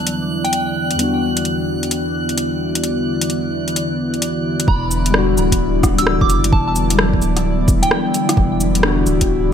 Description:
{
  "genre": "future garage",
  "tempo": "130 BPM",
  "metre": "4/4",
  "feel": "swing 64% on 16ths",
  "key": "E minor",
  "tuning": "A4 = 441 Hz",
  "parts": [
    { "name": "muted felt-like synth keys", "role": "accompaniment", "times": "0.0-9.5 s", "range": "E2 to F#4", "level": "-21 LUFS", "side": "left 4 dB", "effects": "chorus, vintage 12-bit sampler grit, sidechain pumping, digital delay" },
    { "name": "airy breathy pad", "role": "sustained chords", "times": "0.0-9.5 s", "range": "D3 to D5", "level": "-21 LUFS", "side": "right 1 dB", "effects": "chorus, sidechain pumping" },
    { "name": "drifting glass-harmonics texture", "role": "texture", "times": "0.0-4.7 s", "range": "F#6", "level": "-28 LUFS", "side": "right 2 dB", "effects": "chorus, built-in reverb" },
    { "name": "deep house drum kit", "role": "drums", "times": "0.1-9.3 s", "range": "cabasa, hi-hat, rim click", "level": "-20 LUFS", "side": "equal", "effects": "overdrive" },
    { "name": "soft synth bell", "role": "melody", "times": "0.4-0.9, 4.7-8.3 s", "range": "G5 to E6", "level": "-24 LUFS", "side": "right 1 dB", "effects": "chorus, digital delay" },
    { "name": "soft dub sub bass", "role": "bass", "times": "4.7-9.5 s", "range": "D1 to F#1", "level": "-20 LUFS", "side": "equal", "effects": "sidechain pumping" },
    { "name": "electronic kick drum", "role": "drums", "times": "4.7-9.3 s", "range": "none", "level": "-18 LUFS", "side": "equal", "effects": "overdrive" }
  ],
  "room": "moderate lush hall reverb, RT60 2.0 s, digital ambience",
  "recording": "bright 1980s-style digital production",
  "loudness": "-15 LUFS",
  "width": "side -8 dB against mid",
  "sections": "0.0-4.7 A section; 4.7-9.5 B section",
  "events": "none",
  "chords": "0.0 Em9"
}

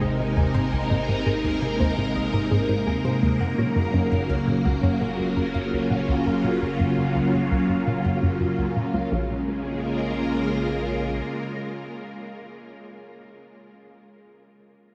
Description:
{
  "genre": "ambient, sequencer-driven space music",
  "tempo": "84 BPM",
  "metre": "4/4",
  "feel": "straight",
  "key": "Bb minor",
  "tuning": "A4 = 440 Hz",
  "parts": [
    { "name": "phased string machine", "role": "sustained chords", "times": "0.0-12.7 s", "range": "C3 to Bb4", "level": "-26 LUFS", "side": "equal", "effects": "ensemble chorus, phaser" },
    { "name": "unison pluck", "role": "arpeggios", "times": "0.0-9.4 s", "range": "Ab4 to Bb5", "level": "-40 LUFS", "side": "equal", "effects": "none" },
    { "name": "hollow square pluck", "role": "riff", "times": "0.0-9.5 s", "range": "Bb1 to C3", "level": "-28 LUFS", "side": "equal", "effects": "chorus, tape echo" },
    { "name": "warm sub bass", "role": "bass", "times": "0.0-11.2 s", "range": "Gb1 to Bb1", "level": "-42 LUFS", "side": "equal", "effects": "none" }
  ],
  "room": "wet huge ambient reverb, RT60 7.4 s",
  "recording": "none",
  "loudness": "-24 LUFS",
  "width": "mono",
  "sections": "0.0-9.1 A section; 9.1-12.0 B section",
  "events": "fade-out on sub bass 0.0-9.1",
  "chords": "0.0 Abadd9; 3.4 Gbmaj7; 9.1 Bbm7"
}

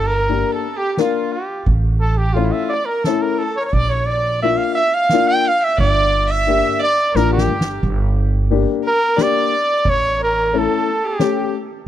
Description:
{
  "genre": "klezmer",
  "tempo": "88 BPM",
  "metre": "3/4",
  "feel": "straight",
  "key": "G dorian sharp4",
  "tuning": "A4 = 440 Hz",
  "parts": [
    { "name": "warm cornet", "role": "melody", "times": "0.0-11.6 s", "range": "F4 to G5", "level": "-18 LUFS", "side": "right 1 dB", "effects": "tape echo" },
    { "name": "warm violin", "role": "second line", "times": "0.0-11.5 s", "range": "E4 to G5", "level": "-26 LUFS", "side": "right 4 dB", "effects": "none" },
    { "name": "upright bass", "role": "bass", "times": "0.0-10.7 s", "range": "G1 to Bb1", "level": "-19 LUFS", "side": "right 1 dB", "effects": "none" },
    { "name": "dark upright piano", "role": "accompaniment", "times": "0.3-11.5 s", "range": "A3 to Bb4", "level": "-19 LUFS", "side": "left 10 dB", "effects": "none" },
    { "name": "soft-mallet drum kit", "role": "drums", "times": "0.3-11.3 s", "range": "kick drum, ride cymbal, snare drum", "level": "-26 LUFS", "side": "right 1 dB", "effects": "none" }
  ],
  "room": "small room ambience",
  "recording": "dry, close 1970s-style studio recording",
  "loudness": "-15 LUFS",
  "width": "side -11 dB against mid",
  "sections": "0.0-7.8 A section; 7.8-11.9 B section",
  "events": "speeding up 0.0-11.9; cornet solo 0.0-7.8; drum fill 7.2-7.8",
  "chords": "0.0 Gm; 1.7 A; 3.7 Bb; 5.8 Gm; 9.8 A"
}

